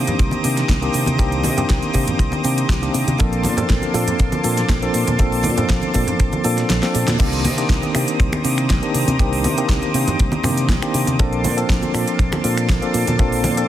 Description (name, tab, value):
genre	nu-disco, nu disco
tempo	120 BPM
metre	4/4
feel	straight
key	C dorian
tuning	A4 = 445 Hz
part	tine electric piano	accompaniment	0.0-13.7 s	Eb3 to A4	-21 LUFS	equal	fast stereo tremolo, sidechain pumping, digital delay
part	lush unison pad	sustained chords	0.0-13.7 s	Bb3 to Eb6	-26 LUFS	equal	chorus, vintage 12-bit sampler grit, sidechain pumping
part	fingered electric bass	bass	0.0-13.6 s	Bb1 to C3	-22 LUFS	equal	sidechain pumping
part	pop drum kit	drums	0.1-13.7 s	crash cymbal, finger snaps, hi-hat, snare drum	-25 LUFS	right 1 dB	small room reverb
part	maracas, congas and bongos	percussion	0.1-13.7 s	none	-26 LUFS	right 1 dB	none
part	kick drum	drums	0.2-13.3 s	none	-19 LUFS	equal	small room reverb
room	light reverb, small room ambience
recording	heavily compressed radio sound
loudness	-16 LUFS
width	side -12 dB against mid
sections	0.0-7.2 A section; 7.2-13.7 B section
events	kick drops out 6.7-7.2; drum fill 6.8-7.2; band accent 7.1; drop 7.2-13.7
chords	0.0 Cm9; 3.2 Bbmaj9; 7.2 Cm9; 11.2 Bbmaj9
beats	0.19 0.69 | 1.19 1.69 2.19 2.69 | 3.19 3.69 4.19 4.69 | 5.19 5.69 6.19 6.69 | 7.19 7.69 8.19 8.69 | 9.19 9.69 10.19 10.69 | 11.19 11.69 12.19 12.69 | 13.19